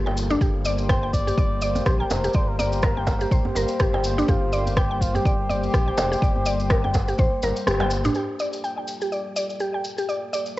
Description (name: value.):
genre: afro house.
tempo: 124 BPM.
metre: 4/4.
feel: swing 57% on 16ths.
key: G minor.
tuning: A4 = 440 Hz.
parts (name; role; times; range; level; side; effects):
warm analog pad; sustained chords; 0.0-10.6 s; G3 to C5; -30 LUFS; left 2 dB; chorus, sidechain pumping, cassette tape.
mallet-like synth pluck; arpeggios; 0.0-10.5 s; D4 to G5; -26 LUFS; equal; chorus, vintage 12-bit sampler grit, sidechain pumping, cassette tape, tape echo.
round analog bass; bass; 0.0-8.1 s; F1 to Bb1; -27 LUFS; equal; tube saturation, sidechain pumping.
djembe; percussion; 0.1-8.1 s; none; -30 LUFS; right 2 dB; none.
cabasa; percussion; 0.2-10.6 s; none; -36 LUFS; left 2 dB; none.
electronic kick drum; drums; 0.4-7.3 s; none; -22 LUFS; equal; small room ambience, cassette tape.
trumpet with cup mute; melody; 0.9-7.7 s; F4 to D5; -30 LUFS; equal; tape echo.
afro-pop drum kit; drums; 0.9-8.1 s; rim click, toms; -29 LUFS; equal; low-pass filter on snare, small room ambience, cassette tape, low-pass filter on toms.
room: light reverb, small room ambience.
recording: home recording on cassette, nothing above 7.8 kHz.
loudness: -20 LUFS.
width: side -17 dB against mid.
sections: 0.0-8.2 A section; 8.2-10.6 B section.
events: kick drops out 7.7-8.2; drum fill 7.7-8.2; band accent 7.7.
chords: 0.0 Gm7; 8.2 Gm9.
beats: | 0.41 0.90 1.38 1.86 | 2.35 2.83 3.32 3.80 | 4.28 4.77 5.25 5.74 | 6.22 6.70 7.19 7.67 | 8.15 8.64 9.12 9.61 | 10.09 10.57.